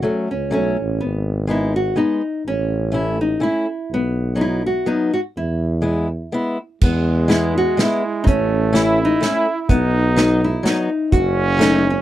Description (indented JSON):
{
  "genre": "alpine folk, alpine dance band",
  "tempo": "125 BPM",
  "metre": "3/4",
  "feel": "swing 55% on 8ths",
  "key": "E major",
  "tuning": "A4 = 440 Hz",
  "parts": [
    { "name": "nylon-string guitar", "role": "melody", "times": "0.0-12.0 s", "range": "B3 to F#4", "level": "-21 LUFS", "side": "equal", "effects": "none" },
    { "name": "fingerpicked old ladder-braced acoustic guitar", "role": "accompaniment", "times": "0.0-11.8 s", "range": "F#3 to E4", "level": "-20 LUFS", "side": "left 2 dB", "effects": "none" },
    { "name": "warm tuba", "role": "bass", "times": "0.0-12.0 s", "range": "F#1 to E2", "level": "-21 LUFS", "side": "equal", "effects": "none" },
    { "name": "mellow trumpet", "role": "second line", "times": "6.8-12.0 s", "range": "G#3 to E4", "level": "-22 LUFS", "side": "right 4 dB", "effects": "none" },
    { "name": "unplugged drum kit", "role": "drums", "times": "6.8-11.7 s", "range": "crash cymbal, hi-hat, kick drum, snare drum", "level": "-18 LUFS", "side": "right 1 dB", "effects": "none" }
  ],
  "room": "light reverb",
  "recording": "dry, close 1970s-style studio recording",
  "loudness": "-16 LUFS",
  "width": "side -13 dB against mid",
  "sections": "0.0-6.8 A section; 6.8-12.0 A section",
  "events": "none",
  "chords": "0.0 F#m; 1.0 G#m; 2.5 A; 3.9 B; 5.3 E; 8.3 A; 9.7 B; 11.1 F#m"
}